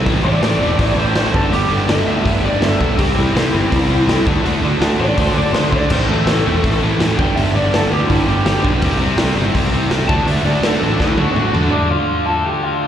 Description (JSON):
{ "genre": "punk rock", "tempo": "164 BPM", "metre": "4/4", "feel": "straight", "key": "unclear", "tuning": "A4 = 439 Hz", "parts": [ { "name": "distorted electric guitar", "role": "riff", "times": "0.0-12.9 s", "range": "G2 to D4", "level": "-23 LUFS", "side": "left 8 dB", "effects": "distortion, slapback echo" }, { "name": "distorted electric guitar", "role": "riff", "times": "0.0-11.7 s", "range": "G2 to D4", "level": "-25 LUFS", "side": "equal", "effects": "distortion, slapback echo" }, { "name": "sludgy distorted guitar", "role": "riff", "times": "0.0-11.7 s", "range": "G2 to E4", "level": "-21 LUFS", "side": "right 8 dB", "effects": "overdrive, slapback echo" }, { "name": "fuzz picked electric bass", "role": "bass", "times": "0.0-11.7 s", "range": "E1 to D3", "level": "-19 LUFS", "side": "equal", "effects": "overdrive" }, { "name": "raw garage drum kit", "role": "drums", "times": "0.1-11.6 s", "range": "crash cymbal, hi-hat, kick drum, snare drum, toms", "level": "-20 LUFS", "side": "equal", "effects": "none" }, { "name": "lead guitar through a small cranked amp", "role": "melody", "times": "0.2-12.9 s", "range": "D4 to A5", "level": "-20 LUFS", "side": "left 1 dB", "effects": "overdrive, slapback echo, tape echo" } ], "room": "small room ambience", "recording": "live gig heard through the venue's PA, recital hall reverb", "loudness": "-13 LUFS", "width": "side -10 dB against mid", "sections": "0.1-11.7 A section; 11.7-12.9 B section", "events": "lead electric guitar solo 0.1-11.7; drum fill 11.0-11.7", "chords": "0.1 Am; 1.3 G; 3.0 C; 4.3 D; 5.9 Am; 7.2 G; 8.8 C; 10.1 D; 11.7 Dm" }